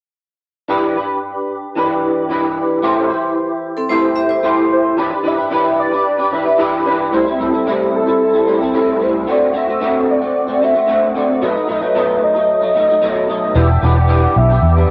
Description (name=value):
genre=indie pop, bedroom pop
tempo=112 BPM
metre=4/4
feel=straight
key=unclear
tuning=A4 = 440 Hz
part: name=electric guitar through a small old amp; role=accompaniment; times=0.7-14.9 s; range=A2 to C5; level=-18 LUFS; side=equal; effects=ensemble chorus, vibrato effect, cassette tape, plate reverb
part: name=vibraphone with medium hard mallets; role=second line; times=3.8-4.9 s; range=C4 to E5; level=-21 LUFS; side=equal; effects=lush chorus, cassette tape, plate reverb, tape echo
part: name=warm velvety synth lead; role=melody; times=4.7-14.9 s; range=A4 to F#5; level=-19 LUFS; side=equal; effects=phaser, lush chorus, plate reverb, tape echo
part: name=vintage muted fingered electric bass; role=bass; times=13.6-14.8 s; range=E1 to E2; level=-14 LUFS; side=equal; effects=none
room=moderate studio reverb, RT60 0.5 s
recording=home recording on cassette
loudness=-16 LUFS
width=mono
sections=0.7-5.0 A section; 5.0-14.9 B section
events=none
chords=0.7 Em7; 2.8 Am7; 5.0 Em7; 7.1 Am7; 9.3 D7; 11.4 B7; 13.6 Em7